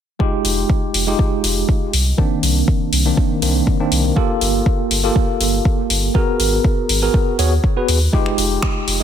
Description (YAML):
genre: deep house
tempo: 121 BPM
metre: 4/4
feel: swing 53% on 16ths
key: F dorian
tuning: A4 = 440 Hz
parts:
  - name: tine electric piano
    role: stabs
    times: 0.2-9.0 s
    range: Eb3 to Db5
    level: -19 LUFS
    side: equal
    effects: medium stereo tremolo, low-pass filter, dub echo
  - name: electronic kick drum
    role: drums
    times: 0.2-8.7 s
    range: none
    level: -17 LUFS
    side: equal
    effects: none
  - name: round analog bass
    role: bass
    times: 0.4-9.0 s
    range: F1 to Eb2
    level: -19 LUFS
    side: equal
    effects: sidechain pumping
  - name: deep house drum kit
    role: drums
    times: 0.4-9.0 s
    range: finger snaps, hi-hat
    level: -21 LUFS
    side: left 2 dB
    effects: none
room: little or no reverb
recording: none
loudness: -14 LUFS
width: side -9 dB against mid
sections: 0.2-9.0 A section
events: none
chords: 0.2 Fm9; 1.9 Cm9; 4.2 Gm9; 6.2 Abm9; 8.1 Fm9